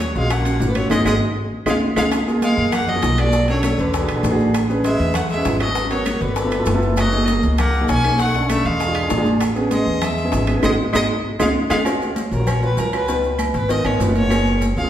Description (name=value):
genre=Afro-Cuban jazz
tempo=197 BPM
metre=4/4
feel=straight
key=unclear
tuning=A4 = 443 Hz
part: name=rich fiddle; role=melody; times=0.0-14.9 s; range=Bb4 to G#5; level=-24 LUFS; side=left 1 dB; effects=none
part: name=clear tenor saxophone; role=second line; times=0.0-11.8 s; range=D3 to C#4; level=-26 LUFS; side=left 1 dB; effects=none
part: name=upright bass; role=bass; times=0.0-14.9 s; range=F#1 to F#2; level=-22 LUFS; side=equal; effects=none
part: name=bongos and cowbell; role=percussion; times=0.0-14.8 s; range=none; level=-28 LUFS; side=left 4 dB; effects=none
part: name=maracas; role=percussion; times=0.0-14.9 s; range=none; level=-38 LUFS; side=right 4 dB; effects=none
part: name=timbales and agogo bells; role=percussion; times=0.0-14.8 s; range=none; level=-29 LUFS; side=right 4 dB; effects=none
part: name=warm concert grand piano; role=accompaniment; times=0.2-14.9 s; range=A#3 to Db5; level=-22 LUFS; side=right 1 dB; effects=none
part: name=claves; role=percussion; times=0.3-14.5 s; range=none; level=-34 LUFS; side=right 2 dB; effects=none
part: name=congas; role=percussion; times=0.3-14.9 s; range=none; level=-25 LUFS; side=equal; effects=none
room=wet recital hall reverb, RT60 1.6 s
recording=recorded in a church or concert hall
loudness=-16 LUFS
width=side -11 dB against mid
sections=0.0-2.1 A section; 2.1-11.9 B section; 11.9-14.9 C section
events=drum fill 0.9-2.1, 10.6-11.9; band accent 0.9-2.1, 10.6-11.9; fiddle solo 11.9-14.9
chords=0.0 Ebm7 (rootless); 0.9 Ab5; 1.5 Db; 2.1 F#maj9; 3.3 Bm7; 3.9 E9; 4.5 Amaj9; 5.8 G#m7; 6.4 G13; 7.0 F#69; 8.2 Bm7; 8.8 E7b9; 9.4 Amaj7; 10.6 G#5; 11.2 C#; 11.9 Gbmaj7; 13.1 Db13; 14.3 Gbmaj9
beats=0.00 0.31 0.61 | 0.91 1.22 1.52 1.82 | 2.12 2.43 2.73 3.03 | 3.33 3.64 3.94 4.24 | 4.54 4.85 5.15 5.45 | 5.76 6.06 6.37 6.67 | 6.97 7.28 7.58 7.89 | 8.19 8.50 8.80 9.11 | 9.41 9.72 10.02 10.33 | 10.63 10.94 11.25 11.55 | 11.86 12.16 12.47 12.78 | 13.09 13.39 13.70 14.01 | 14.31 14.62